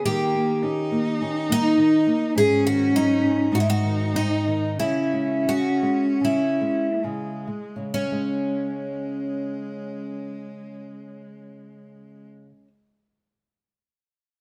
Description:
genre	fado-style ballad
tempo	65-105 BPM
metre	4/4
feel	rubato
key	C# minor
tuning	A4 = 440 Hz
part	picked twelve-string acoustic guitar	melody	0.0-12.7 s	C#4 to G#4	-26 LUFS	equal	none
part	rich cello	second line	0.0-12.3 s	G#3 to D#4	-29 LUFS	equal	none
part	nylon-string guitar	accompaniment	0.0-12.9 s	G#2 to C#4	-30 LUFS	equal	none
room	moderate stone room reverb, RT60 1.2 s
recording	band playing live in one room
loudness	-23 LUFS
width	mono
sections	0.0-7.9 A section; 7.9-11.5 B section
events	slowing down 2.4-7.9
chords	0.0 D#7; 2.4 G#7sus4; 3.5 G#; 4.8 C#5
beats	| 0.04 0.63 1.21 1.78 | 2.35 2.93 3.53 4.14 | 4.78 5.47 6.21 7.03 | 7.93 8.84 9.73 10.61

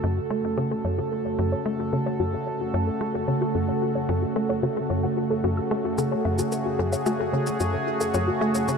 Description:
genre	ambient, sequencer-driven space music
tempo	111 BPM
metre	4/4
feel	straight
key	F# minor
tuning	A4 = 440 Hz
part	sweeping resonant pad	sustained chords	0.0-8.8 s	C#3 to A4	-26 LUFS	right 2 dB	chorus
part	soft round pluck	arpeggios	0.0-8.8 s	F#4 to E6	-31 LUFS	left 4 dB	chorus, auto-pan, ping-pong delay
part	tight sequencer bass	riff	0.0-8.8 s	F#2 to A3	-27 LUFS	left 1 dB	wide subtle chorus, ping-pong delay
part	shaker and woodblock	percussion	6.0-8.8 s	none	-37 LUFS	left 1 dB	ping-pong delay
room	wet huge ambient reverb, RT60 8.3 s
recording	none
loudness	-23 LUFS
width	side -6 dB against mid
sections	0.0-8.8 A section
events	filter sweep on synth arpeggio sound 0.0-8.8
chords	0.0 F#m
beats	0.04 0.58 1.12 | 1.66 2.20 2.74 3.28 | 3.82 4.36 4.90 5.44 | 5.98 6.52 7.06 7.60 | 8.14 8.68

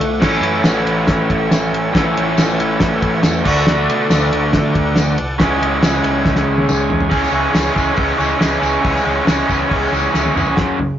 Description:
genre	garage rock duo or trio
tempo	139 BPM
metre	4/4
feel	straight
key	unclear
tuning	A4 = 439 Hz
part	combo organ	sustained chords	0.0-10.6 s	G#4 to G#5	-26 LUFS	left 1 dB	none
part	raw garage guitar	riff	0.0-11.0 s	F#2 to A4	-16 LUFS	equal	overdrive
part	hollow-body short-scale picked electric bass	bass	0.0-10.9 s	F#1 to D3	-24 LUFS	equal	tube saturation
part	cloth-damped thuddy drum kit	drums	0.0-10.9 s	crash cymbal, hi-hat, kick drum, ride cymbal, snare drum, toms	-18 LUFS	equal	none
part	tambourine	percussion	0.7-10.5 s	none	-32 LUFS	left 4 dB	none
room	moderate studio reverb, RT60 0.6 s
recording	rough rehearsal-room recording, nothing above 7.5 kHz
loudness	-13 LUFS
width	side -10 dB against mid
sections	0.0-7.1 A section; 7.1-10.6 B section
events	transistor combo organ fill 0.0, 6.2-7.1; drum fill 6.2-7.1, 10.1-10.6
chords	0.2 A; 3.4 D; 5.4 C#m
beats	| 0.22 0.65 1.08 1.51 | 1.94 2.37 2.80 3.23 | 3.66 4.09 4.53 4.96 | 5.39 5.82 6.25 6.68 | 7.11 7.54 7.97 8.41 | 8.84 9.28 9.71 10.14 | 10.58

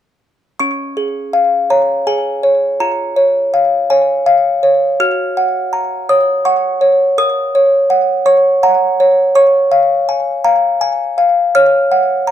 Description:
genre	classical, lullaby for music box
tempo	82 BPM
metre	3/4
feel	straight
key	Db major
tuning	A4 = 439 Hz
part	music box	solo	0.6-12.3 s	Db4 to F6	-11 LUFS	equal	slapback echo
room	moderate booth ambience, RT60 0.2 s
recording	dry, close 1970s-style studio recording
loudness	-11 LUFS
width	side -10 dB against mid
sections	0.6-12.3 A section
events	none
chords	0.6 Db; 2.8 Db/F; 5.0 Gb; 7.2 Gb/Bb; 9.4 Db; 11.6 Gb5/Db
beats	| 0.60 1.34 2.07 | 2.80 3.53 4.26 | 5.00 5.73 6.46 | 7.18 7.91 8.63 | 9.36 10.09 10.82 | 11.55 12.28

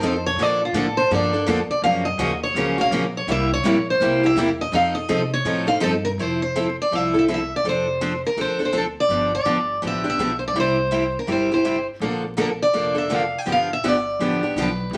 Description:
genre	acoustic string swing (jazz manouche)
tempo	165 BPM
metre	4/4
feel	swing 61% on 8ths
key	F major from 6.2 s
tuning	A4 = 441 Hz
part	picked steel-string acoustic guitar	melody	0.0-15.0 s	F4 to G5	-24 LUFS	equal	none
part	picked steel-string acoustic guitar	accompaniment	0.0-15.0 s	C3 to A4	-25 LUFS	equal	none
part	picked steel-string acoustic guitar	accompaniment	0.0-5.9, 12.0-15.0 s	C3 to Bb4	-30 LUFS	equal	none
part	upright bass	bass	0.0-15.0 s	F1 to C3	-33 LUFS	equal	none
room	wet studio reverb, RT60 0.6 s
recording	vinyl crackle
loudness	-21 LUFS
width	mono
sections	0.0-6.2 A section; 6.2-15.0 B section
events	steel-string acoustic guitar solo 0.0-6.2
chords	0.4 Bbmaj7; 1.8 Gbmaj7; 3.3 C7; 4.7 F7; 6.2 Fmaj7; 7.6 Dm7/F; 9.1 G7; 10.6 C; 12.0 Bbmaj7; 13.5 G7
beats	0.02 | 0.38 0.75 1.11 1.47 | 1.83 2.20 2.56 2.92 | 3.28 3.65 4.01 4.37 | 4.73 5.10 5.46 5.82 | 6.18 6.55 6.91 7.28 | 7.64 8.00 8.37 8.73 | 9.10 9.46 9.82 10.19 | 10.55 10.92 11.28 11.65 | 12.01 12.38 12.74 13.11 | 13.47 13.84 14.20 14.57 | 14.94

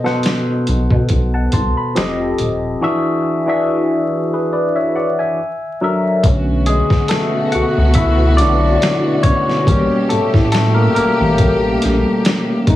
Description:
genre	R&B, neo-soul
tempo	70 BPM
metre	4/4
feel	swing 54% on 16ths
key	unclear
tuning	A4 = 440 Hz
part	barky tine electric piano	accompaniment	0.0-12.8 s	B2 to C6	-16 LUFS	left 1 dB	overdrive, phaser
part	boom bap sampler-style drum kit	drums	0.1-12.8 s	hi-hat, kick drum, snare drum	-18 LUFS	equal	none
part	rubbery square bass	bass	0.7-12.8 s	Eb1 to B2	-16 LUFS	equal	none
part	dark studio string section	sustained chords	6.2-12.8 s	B2 to G4	-22 LUFS	right 2 dB	none
room	moderate studio reverb, RT60 0.7 s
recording	heavily compressed radio sound, vinyl crackle, small room ambience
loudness	-13 LUFS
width	side -14 dB against mid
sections	0.0-6.2 A section; 6.2-12.8 B section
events	tine electric piano solo 6.2-12.8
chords	0.0 B7b9; 2.0 F9; 2.8 E9; 5.4 F#7alt; 6.2 Bm9; 9.7 A7b9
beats	0.24 1.10 1.96 | 2.81 3.67 4.53 5.38 | 6.24 7.10 7.96 8.81 | 9.67 10.53 11.38 12.24

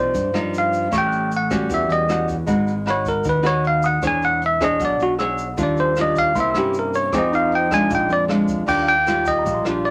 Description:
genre	bossa nova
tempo	155 BPM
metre	4/4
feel	straight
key	unclear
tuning	A4 = 435 Hz
part	bell-like tine electric piano	melody	0.0-9.9 s	Gb4 to G#5	-22 LUFS	equal	none
part	nylon-string guitar	accompaniment	0.0-9.9 s	G2 to C#5	-25 LUFS	equal	none
part	warm concert grand piano	accompaniment	0.0-9.9 s	Eb4 to F#6	-31 LUFS	equal	none
part	modern bright fingered electric bass	bass	0.0-9.9 s	E1 to G2	-30 LUFS	equal	none
part	jazz brush drum kit	drums	0.1-9.9 s	crash cymbal, hi-hat, kick drum, rim click	-35 LUFS	equal	none
part	egg shaker	percussion	0.1-9.8 s	none	-48 LUFS	equal	none
room	moderate small room ambience, RT60 0.5 s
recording	none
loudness	-20 LUFS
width	mono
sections	0.0-8.7 A section; 8.7-9.9 B section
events	tine electric piano solo 0.0-8.7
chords	0.0 Cm11; 0.9 A6; 2.5 Abm7; 4.0 E6; 5.6 Ebmaj9; 6.4 C7b9; 7.1 Fm7; 7.9 Bb7; 8.7 Ebmaj9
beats	0.15 0.54 | 0.93 1.31 1.70 2.09 | 2.48 2.87 3.25 3.64 | 4.03 4.42 4.80 5.19 | 5.58 5.97 6.36 6.74 | 7.13 7.52 7.91 8.30 | 8.69 9.07 9.46 9.85

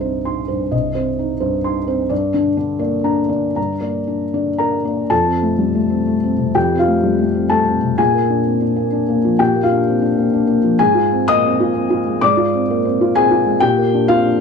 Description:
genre	neoclassical minimalist piano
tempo	127 BPM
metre	3/4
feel	rubato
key	unclear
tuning	A4 = 439 Hz
part	felt-muted upright piano	solo	0.0-14.4 s	C2 to Eb6	-14 LUFS	left 2 dB	none
room	light reverb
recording	small room ambience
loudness	-14 LUFS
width	side -5 dB against mid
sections	0.0-5.1 A section; 5.1-14.4 B section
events	none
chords	0.0 Cm; 2.1 Gm; 5.1 F; 8.0 Bb; 10.8 Fm/Ab; 13.6 Bb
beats	0.26 | 0.72 1.19 1.65 | 2.11 2.58 3.06 | 3.57 4.09 4.60 | 5.11 5.59 6.08 | 6.55 7.03 7.51 | 7.99 8.46 8.93 | 9.39 9.86 10.32 | 10.79 11.29 11.75 | 12.21 12.69 13.15 | 13.62 14.09

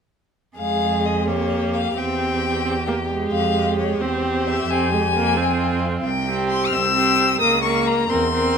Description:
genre	quick classical-period movement for string quartet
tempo	88 BPM (dotted quarters)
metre	6/8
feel	rubato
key	F minor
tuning	A4 = 441 Hz
part	rich violin	melody	0.6-8.6 s	C5 to F6	-22 LUFS	left 6 dB	none
part	rich violin	second line	0.6-8.6 s	F4 to Bb4	-25 LUFS	left 1 dB	none
part	clear viola	accompaniment	0.6-8.6 s	Ab3 to C4	-24 LUFS	right 3 dB	none
part	rich cello	bass	0.6-8.6 s	C2 to F2	-25 LUFS	right 4 dB	none
room	moderate large studio reverb, RT60 1.5 s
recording	minimal, uncompressed stereo recording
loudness	-18 LUFS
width	side -6 dB against mid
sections	0.6-8.6 A section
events	none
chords	0.6 Fm; 1.3 Gm7b5/F; 2.0 C/E; 3.3 Fm; 4.0 C/E; 4.7 Fm; 6.0 C; 7.4 Bbm/Db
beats	| 0.57 1.27 | 1.97 2.65 | 3.33 4.01 | 4.69 5.37 | 6.04 6.73 | 7.41 8.10

